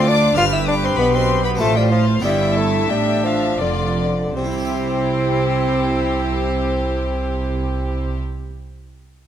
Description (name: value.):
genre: classical, baroque-style concerto movement with solo episodes.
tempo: 78-102 BPM.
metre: 3/4.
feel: straight.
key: C major.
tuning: A4 = 440 Hz.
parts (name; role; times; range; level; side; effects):
clear bassoon; melody; 0.0-8.2 s; D3 to F4; -21 LUFS; left 2 dB; none.
rich chamber violin section; melody; 0.0-8.2 s; C5 to F6; -27 LUFS; left 4 dB; none.
warm chamber violin section; second line; 0.0-8.2 s; G4 to E5; -26 LUFS; left 4 dB; none.
harpsichord; accompaniment; 0.0-8.5 s; D2 to E5; -29 LUFS; right 1 dB; none.
warm chamber viola section; accompaniment; 0.0-8.2 s; D4 to G4; -27 LUFS; right 1 dB; none.
dark chamber cello section; bass; 0.0-8.2 s; D2 to C3; -24 LUFS; right 3 dB; none.
rich chamber double bass section; bass; 0.0-8.2 s; F1 to D2; -23 LUFS; right 3 dB; none.
room: light reverb.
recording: close, detailed microphones.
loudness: -16 LUFS.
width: side -10 dB against mid.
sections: 0.0-4.4 A section; 4.4-9.0 B section.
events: slowing down 0.0-4.4.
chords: 0.4 G; 1.6 F/A; 2.2 G7; 4.4 C.